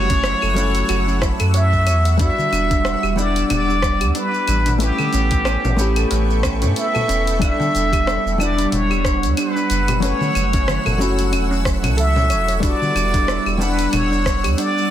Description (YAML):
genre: sunset chillout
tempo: 92 BPM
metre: 4/4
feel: swing 56% on 16ths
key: E dorian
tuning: A4 = 440 Hz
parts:
  - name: trumpet with plunger mute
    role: melody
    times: 0.0-14.9 s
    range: G4 to E5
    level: -22 LUFS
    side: equal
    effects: tape echo
  - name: hollow-body jazz guitar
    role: accompaniment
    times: 0.0-14.9 s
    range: F#3 to F#5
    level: -24 LUFS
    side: moving between left 4 dB and right 6 dB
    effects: auto-pan
  - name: shimmering ambient pad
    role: sustained chords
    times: 0.0-14.9 s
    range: G3 to E6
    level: -27 LUFS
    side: equal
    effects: chorus, built-in reverb, phaser
  - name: steel pan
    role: arpeggios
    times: 0.0-14.7 s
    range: C#4 to E5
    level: -28 LUFS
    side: right 2 dB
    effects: tape echo
  - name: warm sub bass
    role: bass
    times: 0.0-14.5 s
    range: E1 to A2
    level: -20 LUFS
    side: equal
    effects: none
  - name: electronic kick drum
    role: drums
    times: 0.1-14.4 s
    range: none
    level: -21 LUFS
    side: equal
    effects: none
  - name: smooth R&B drum kit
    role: drums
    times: 0.1-14.9 s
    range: claves, hi-hat, rim click, shaker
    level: -26 LUFS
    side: equal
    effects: none
  - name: congas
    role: percussion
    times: 2.4-14.1 s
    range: none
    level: -26 LUFS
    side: left 2 dB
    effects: none
room: light reverb, digital ambience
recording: dense, heavily limited modern master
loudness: -16 LUFS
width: side -11 dB against mid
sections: 0.0-14.9 A section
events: none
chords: 0.0 F#m7; 2.2 Em9; 4.8 A9; 7.4 Em9; 10.0 F#m7; 12.6 Em9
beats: 0.24 0.89 1.54 | 2.20 2.85 3.50 4.15 | 4.80 5.46 6.11 6.76 | 7.41 8.06 8.72 9.37 | 10.02 10.67 11.33 11.98 | 12.63 13.28 13.94 14.59